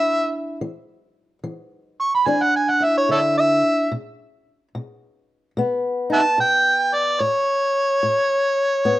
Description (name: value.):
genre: acoustic country blues, solo or duo.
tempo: 73 BPM.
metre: 4/4.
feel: swing 64% on 8ths.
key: unclear.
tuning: A4 = 440 Hz.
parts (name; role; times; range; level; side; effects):
breathy harmonica; melody; 0.0-9.0 s; A4 to C#6; -17 LUFS; equal; overdrive, plate reverb.
fingerpicked old ladder-braced acoustic guitar; accompaniment; 0.0-9.0 s; A2 to E4; -24 LUFS; left 1 dB; plate reverb.
room: moderate studio reverb, RT60 0.5 s.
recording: rough home demo mix.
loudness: -17 LUFS.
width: side -15 dB against mid.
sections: 0.0-9.0 A section.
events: harmonica solo 0.0-9.0.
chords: 0.0 Dsus2; 3.9 N.C.; 7.2 A.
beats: | 0.63 1.45 2.27 3.09 | 3.91 4.73 5.55 6.38 | 7.20 8.02 8.84.